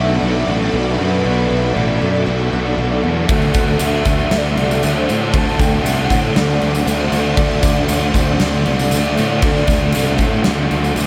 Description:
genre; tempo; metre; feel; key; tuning
rock, shoegaze and dream pop; 117 BPM; 4/4; straight; unclear; A4 = 441 Hz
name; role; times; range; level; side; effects
warm velvety synth lead; melody; 0.0-11.0 s; B4 to A5; -26 LUFS; equal; chorus, phaser, tape echo
string machine, violas; sustained chords; 0.0-11.1 s; A4 to C6; -27 LUFS; equal; ensemble chorus
fingerpicked twelve-string acoustic guitar; arpeggios; 0.0-11.1 s; F#3 to F#4; -30 LUFS; equal; none
crunchy overdriven guitar; riff; 0.0-11.1 s; B2 to F#4; -25 LUFS; equal; reverse reverb
thick fuzz guitar; riff; 0.0-11.1 s; B2 to D4; -24 LUFS; equal; distortion, ensemble chorus
fuzz fingered electric bass; bass; 0.0-11.1 s; A1 to A2; -22 LUFS; equal; overdrive
huge arena drum kit; drums; 3.3-11.1 s; crash cymbal, kick drum, snare drum; -21 LUFS; equal; none
tambourine; percussion; 3.3-11.1 s; none; -34 LUFS; equal; none
room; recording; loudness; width
wet huge ambient reverb, RT60 8.6 s; dreamy mix soaked in reverb; -16 LUFS; mono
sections
0.0-11.1 A section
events
none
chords
0.0 Bm7; 3.3 D7

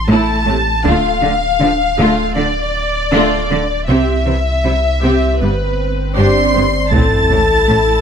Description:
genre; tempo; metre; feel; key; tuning
cinematic, hybrid orchestral and electronic film score; 79 BPM; 4/4; straight; D dorian; A4 = 440 Hz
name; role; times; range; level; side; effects
warm symphonic violin section; melody; 0.0-8.0 s; B4 to C7; -17 LUFS; left 2 dB; none
saturated sub bass; bass; 0.0-8.0 s; D1 to C2; -20 LUFS; equal; none
rich symphonic viola section; accompaniment; 0.1-8.0 s; C3 to G4; -18 LUFS; right 1 dB; none
bright symphonic cello section; bass; 0.1-7.8 s; G2 to D3; -18 LUFS; right 2 dB; none
taiko ensemble; drums; 0.8-2.3, 6.9-7.6 s; none; -19 LUFS; equal; none
swell and sub drop; sound effects; 5.5-8.0 s; none; -22 LUFS; right 3 dB; none
warm symphonic violin section; second line; 6.2-8.0 s; A5 to C6; -20 LUFS; equal; none
warm French horn section; sustained chords; 6.2-8.0 s; A4 to D5; -16 LUFS; left 4 dB; none
rich symphonic double bass section; bass; 6.9-7.8 s; A1; -21 LUFS; right 3 dB; none
room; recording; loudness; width
light reverb; close, detailed microphones; -12 LUFS; side -7 dB against mid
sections
0.0-6.9 A section; 6.9-8.0 A section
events
swell 5.5-6.9; impact 6.9-8.0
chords
0.0 A5; 0.8 Dm; 3.9 C; 5.4 G; 6.9 Am

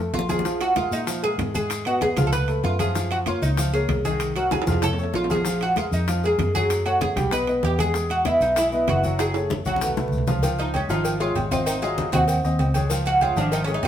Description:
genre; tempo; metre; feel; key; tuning
Afro-Cuban jazz; 193 BPM; 4/4; straight; Db major; A4 = 441 Hz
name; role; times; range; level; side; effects
warm upright piano; accompaniment; 0.0-13.9 s; Eb3 to Ab5; -27 LUFS; left 1 dB; none
fingered electric bass; bass; 0.0-13.9 s; F#1 to Bb2; -26 LUFS; equal; none
oud; melody; 0.1-13.9 s; Db4 to Cb5; -24 LUFS; right 1 dB; none
congas; percussion; 0.1-13.9 s; none; -30 LUFS; equal; none
maracas; percussion; 0.1-13.9 s; none; -36 LUFS; left 3 dB; none
timbales and agogo bells; percussion; 0.1-13.9 s; none; -32 LUFS; right 5 dB; none
bongos and cowbell; percussion; 0.2-13.9 s; none; -33 LUFS; left 6 dB; none
room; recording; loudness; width
moderate stone room reverb, RT60 1.1 s; band playing live in one room; -20 LUFS; side -10 dB against mid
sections
0.5-10.4 A section; 10.4-13.9 B section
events
drum fill 0.0-0.5, 4.5-5.5, 9.2-10.4; oud solo 10.4-13.9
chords
0.5 Bb7sus4; 1.7 Abm; 2.3 Dbaug7; 3.0 Gbmaj9; 4.2 Cm7b5; 4.8 Faug; 5.5 Bb5; 6.7 Gbmadd9; 7.3 Cb6; 8.0 Emaj9; 9.2 Gbm; 9.8 Cbsus2; 10.4 Dbadd9; 11.7 Ab7; 12.9 Db

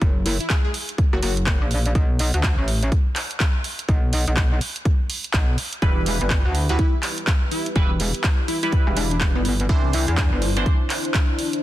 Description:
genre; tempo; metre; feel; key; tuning
bass house; 124 BPM; 4/4; swing 61% on 16ths; E minor; A4 = 440 Hz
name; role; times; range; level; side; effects
metallic wobble bass; bass; 0.0-10.6 s; E1 to E2; -22 LUFS; equal; chorus, overdrive, sidechain pumping
electronic kick drum; drums; 0.0-11.3 s; none; -20 LUFS; equal; overdrive
house drum kit; drums; 0.0-11.6 s; handclaps, hi-hat; -26 LUFS; right 1 dB; overdrive
plucky unison lead; melody; 0.3-1.3, 6.8-9.5 s; B3 to G#4; -29 LUFS; left 1 dB; digital delay
dark analog pad; sustained chords; 7.0-11.6 s; D4 to C5; -30 LUFS; left 2 dB; chorus, sidechain pumping
band-passed chord stab; stabs; 5.8-10.8 s; E3 to C5; -29 LUFS; right 2 dB; phaser, sidechain pumping, digital delay
room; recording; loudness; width
digital ambience; dense, heavily limited modern master; -18 LUFS; side -14 dB against mid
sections
0.0-11.6 A section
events
none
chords
0.0 F#; 1.9 N.C.; 5.8 Em; 9.7 Cadd9

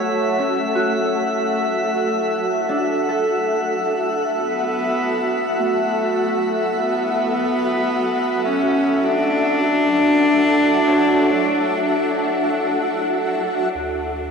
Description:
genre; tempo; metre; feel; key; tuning
ambient; 52 BPM; 4/4; straight; D major; A4 = 440 Hz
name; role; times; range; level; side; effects
rich cello; melody; 0.0-12.6 s; A3 to D4; -21 LUFS; equal; ping-pong delay
granular cloud pad; sustained chords; 0.0-14.3 s; F#4 to F#5; -20 LUFS; equal; built-in reverb
Celtic harp; arpeggios; 0.0-14.3 s; C#4 to C#5; -27 LUFS; equal; ping-pong delay
drifting glass-harmonics texture; texture; 0.0-13.8 s; E5; -29 LUFS; right 1 dB; chorus, built-in reverb
warm sub bass; bass; 13.7-14.3 s; D2; -33 LUFS; equal; none
room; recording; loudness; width
wet huge ambient reverb, RT60 8.0 s; cassette tape; -17 LUFS; side -6 dB against mid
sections
0.0-13.7 A section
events
fade-in on cello 0.0-13.7; fade-out on synth texture 0.0-13.7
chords
0.0 Dmaj7; 13.7 D

